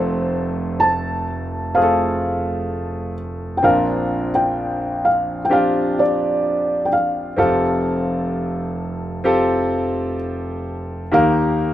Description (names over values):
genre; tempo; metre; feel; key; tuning
pop; 64 BPM; 4/4; straight; unclear; A4 = 440 Hz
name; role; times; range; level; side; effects
felt-muted upright piano; melody; 0.0-11.7 s; C5 to A5; -20 LUFS; equal; none
clear concert grand piano; accompaniment; 0.0-11.7 s; F1 to Bb4; -20 LUFS; equal; none
room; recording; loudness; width
light reverb, small room ambience; rough home demo mix; -17 LUFS; side -12 dB against mid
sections
0.0-11.7 A section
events
none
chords
0.0 F; 3.6 Bbadd9; 7.4 Fadd9; 11.1 Eb